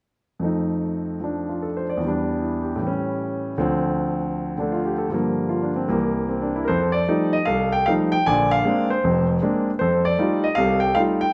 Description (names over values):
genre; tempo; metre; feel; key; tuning
solo jazz; 155 BPM; 4/4; swing 67% on 8ths, rubato; unclear; A4 = 438 Hz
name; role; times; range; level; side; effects
clear concert grand piano; solo; 0.4-11.3 s; F1 to Ab5; -22 LUFS; equal; none
room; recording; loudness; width
wet large studio reverb, RT60 1.3 s; none; -22 LUFS; mono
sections
0.4-6.7 A section; 6.7-11.3 B section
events
none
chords
0.4 F7; 2.0 Em7; 2.8 A7; 3.6 Dm7; 5.1 Gm7; 5.9 C7; 6.7 F9; 8.3 Bb9; 9.8 F9